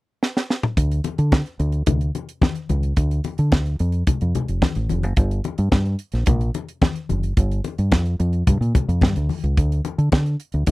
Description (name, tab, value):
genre	disco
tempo	109 BPM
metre	4/4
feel	straight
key	D minor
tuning	A4 = 440 Hz
part	tight funk drum kit	drums	0.2-10.7 s	hi-hat, kick drum, snare drum, toms	-18 LUFS	equal	none
part	fingered electric bass	bass	0.8-10.7 s	F1 to D3	-20 LUFS	equal	none
part	congas	percussion	1.0-10.7 s	none	-25 LUFS	left 5 dB	none
room	little or no reverb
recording	dry, close 1970s-style studio recording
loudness	-18 LUFS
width	side -19 dB against mid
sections	0.8-10.7 A section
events	drum fill 0.2-0.8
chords	none